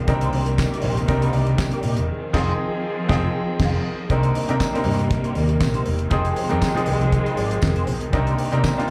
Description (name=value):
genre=disco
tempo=119 BPM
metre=4/4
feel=swing 56% on 16ths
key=C minor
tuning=A4 = 440 Hz
part: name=clear baby grand piano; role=accompaniment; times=0.0-8.9 s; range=C3 to Bb4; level=-27 LUFS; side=equal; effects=slapback echo
part: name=warm studio string section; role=sustained chords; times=0.0-8.9 s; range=C3 to Ab4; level=-29 LUFS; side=equal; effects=none
part: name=fingered electric bass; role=bass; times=0.0-8.6 s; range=E1 to C3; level=-25 LUFS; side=equal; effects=none
part: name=clean electric guitar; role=accompaniment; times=0.1-8.9 s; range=Ab3 to D5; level=-35 LUFS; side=equal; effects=wah, analog chorus, slapback echo
part: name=damped 70s drum kit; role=drums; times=0.1-8.9 s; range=crash cymbal, handclaps, hi-hat, kick drum, snare drum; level=-27 LUFS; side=equal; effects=none
part: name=congas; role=percussion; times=0.1-8.9 s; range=none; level=-36 LUFS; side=equal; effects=none
part: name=tambourine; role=percussion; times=0.6-8.8 s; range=none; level=-43 LUFS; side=equal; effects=none
room=small room reverb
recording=live gig heard through the venue's PA, club ambience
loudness=-21 LUFS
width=mono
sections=0.0-4.1 A section; 4.1-8.9 B section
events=band accent 2.1-4.1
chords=0.1 Cm7; 2.1 Fm7; 4.1 Cm7; 6.1 Fm7; 8.1 Cm7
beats=| 0.08 0.58 1.08 1.59 | 2.09 2.59 3.10 3.60 | 4.10 4.61 5.11 5.61 | 6.12 6.62 7.12 7.63 | 8.13 8.64